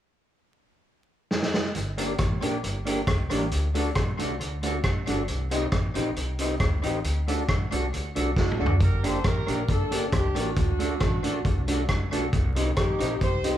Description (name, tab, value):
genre	ska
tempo	136 BPM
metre	4/4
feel	straight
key	G harmonic minor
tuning	A4 = 435 Hz
part	vintage drum kit	drums	1.3-13.5 s	hi-hat, kick drum, rim click, snare drum, toms	-26 LUFS	equal	tape echo
part	upright bass	bass	1.8-13.6 s	G1 to D2	-30 LUFS	equal	none
part	electric guitar through a small old amp	accompaniment	2.0-13.6 s	A3 to G4	-31 LUFS	right 3 dB	tape echo
part	mellow tonewheel organ	stabs	2.0-13.6 s	D4 to Eb5	-33 LUFS	left 3 dB	chorus vibrato, slow rotary speaker
part	warm horn section	melody	8.4-13.6 s	D4 to C5	-31 LUFS	equal	none
room	light reverb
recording	band playing live in one room, vinyl crackle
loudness	-23 LUFS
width	side -11 dB against mid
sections	0.0-1.7 A section; 1.7-8.8 B section; 8.8-13.6 C section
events	drum fill 1.3-1.7, 8.4-8.8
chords	0.0 N.C.; 1.7 Gm; 3.5 D; 5.3 Cm; 7.0 D; 8.8 Gm; 10.6 D; 12.3 Cm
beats	0.42 0.86 1.30 | 1.75 2.19 2.63 3.07 | 3.51 3.95 4.40 4.84 | 5.28 5.72 6.16 6.60 | 7.04 7.48 7.92 8.36 | 8.80 9.24 9.69 10.12 | 10.56 11.01 11.45 11.89 | 12.33 12.77 13.21